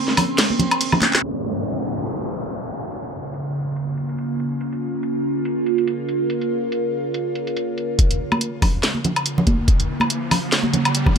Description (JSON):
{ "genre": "deep dubstep", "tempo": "142 BPM", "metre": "4/4", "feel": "swing 56% on 16ths, half-time", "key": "Bb minor", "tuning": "A4 = 445 Hz", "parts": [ { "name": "overtone-sweeping drone", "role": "sustained chords", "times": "0.0-11.2 s", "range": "Db3 to F4", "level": "-23 LUFS", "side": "right 2 dB", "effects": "chorus, built-in reverb" }, { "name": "garage drum kit", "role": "drums", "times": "0.1-11.2 s", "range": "crash cymbal, handclaps, hi-hat, snare drum, woodblock", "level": "-20 LUFS", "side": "left 1 dB", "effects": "high-pass filter on hats, low-pass filter on hats, high-pass filter on cymbals, low-pass filter on cymbals, high-pass filter on perc, low-pass filter on perc, high-pass filter on snare, low-pass filter on snare, high-pass filter on room, low-pass filter on room" }, { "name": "congas", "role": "percussion", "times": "0.2-1.1, 8.3-11.2 s", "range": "none", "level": "-23 LUFS", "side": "right 1 dB", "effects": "dub echo" }, { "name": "downlifter and riser", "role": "sound effects", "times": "1.2-4.6, 9.2-11.2 s", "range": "none", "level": "-29 LUFS", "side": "left 1 dB", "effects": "none" }, { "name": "electronic kick drum", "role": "drums", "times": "8.0-11.1 s", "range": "none", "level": "-17 LUFS", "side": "equal", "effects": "none" } ], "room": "light reverb", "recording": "low-pass filter", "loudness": "-19 LUFS", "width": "side -7 dB against mid", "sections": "0.0-1.2 A section; 1.2-8.0 B section; 8.0-11.2 C section", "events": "break 0.0-1.2; drop 0.0-1.2; drum fill 1.0; band accent 1.1; filter sweep on synth drone 1.2-8.0, 8.0-11.2; filter sweep 1.2-8.0; build-up 8.0-11.2; riser 9.2-11.2", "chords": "0.0 Bbm" }